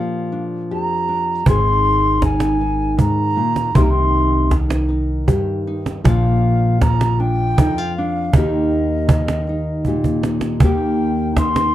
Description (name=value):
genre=acoustic folk duo or small band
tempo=79 BPM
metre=3/4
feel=straight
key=Eb major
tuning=A4 = 439 Hz
part: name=baroque flute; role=melody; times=0.0-11.7 s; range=Eb5 to C6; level=-21 LUFS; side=equal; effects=none
part: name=nylon-string guitar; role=accompaniment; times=0.0-11.7 s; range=Eb2 to Ab4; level=-20 LUFS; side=left 1 dB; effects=none
part: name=upright bass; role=bass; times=1.5-11.7 s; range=Ab1 to Eb2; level=-19 LUFS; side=equal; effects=none
part: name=cajon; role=percussion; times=1.5-11.7 s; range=none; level=-17 LUFS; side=right 2 dB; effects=none
room=little or no reverb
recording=dry, close 1970s-style studio recording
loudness=-15 LUFS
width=side -13 dB against mid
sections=0.0-10.6 A section; 10.6-11.7 A section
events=drum fill 9.9-10.6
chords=0.0 Bb6; 1.5 Abadd9; 3.8 Cm7; 6.0 Bb; 8.3 Eb